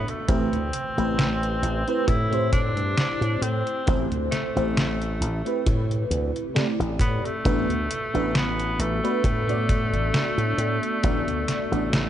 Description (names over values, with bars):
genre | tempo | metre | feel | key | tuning
vaporwave | 67 BPM | 4/4 | swing 55% on 16ths | A dorian | A4 = 440 Hz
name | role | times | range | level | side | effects
clear tenor saxophone | melody | 0.0-12.1 s | A3 to E4 | -29 LUFS | equal | tape echo
FM electric piano with soft pad layer | accompaniment | 0.0-12.1 s | A3 to E5 | -27 LUFS | equal | phaser, analog chorus
slap bass with an envelope filter | bass | 0.0-12.1 s | A1 to A2 | -26 LUFS | equal | none
detuned 8-bit digital drum machine | drums | 0.1-12.1 s | hi-hat, snare drum | -27 LUFS | equal | none
kick drum | drums | 0.3-11.2 s | none | -28 LUFS | equal | none
room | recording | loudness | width
light reverb, small room ambience | nothing above 10.4 kHz | -22 LUFS | side -11 dB against mid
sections
0.0-12.1 A section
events
none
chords
0.3 Am9; 7.5 Bm7/A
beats
| 0.29 1.18 2.08 2.97 | 3.87 4.76 5.66 6.55 | 7.45 8.35 9.24 10.14 | 11.03 11.93